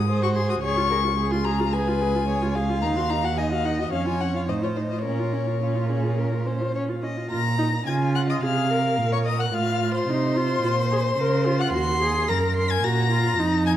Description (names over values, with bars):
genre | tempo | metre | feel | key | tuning
quick classical-period movement for string quartet | 109 BPM | 4/4 | straight | Bb minor | A4 = 440 Hz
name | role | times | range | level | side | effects
rich violin | melody | 0.0-13.7 s | C5 to C7 | -28 LUFS | left 8 dB | none
rich viola | accompaniment | 0.0-13.8 s | Db4 to Bb4 | -27 LUFS | right 1 dB | none
warm cello | bass | 0.0-13.8 s | Db2 to Db3 | -24 LUFS | right 3 dB | none
warm violin | second line | 0.1-13.7 s | F4 to C6 | -28 LUFS | left 2 dB | none
room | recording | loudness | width
wet recital hall reverb, RT60 1.6 s | dark, warm production | -21 LUFS | side -11 dB against mid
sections
0.0-7.3 A section; 7.3-13.8 A section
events
none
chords
0.0 Ab7; 0.6 Db; 2.8 Ebm; 3.9 Dbadd11/F; 4.5 F7/A; 5.0 Bbm; 9.5 F7/A; 10.6 Bbm; 11.7 Ebm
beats
0.08 | 0.63 1.18 1.73 2.28 | 2.83 3.38 3.93 4.48 | 5.05 5.61 6.18 6.75 | 7.32 7.87 8.43 8.98 | 9.54 10.09 10.64 11.19 | 11.74 12.29 12.84 13.39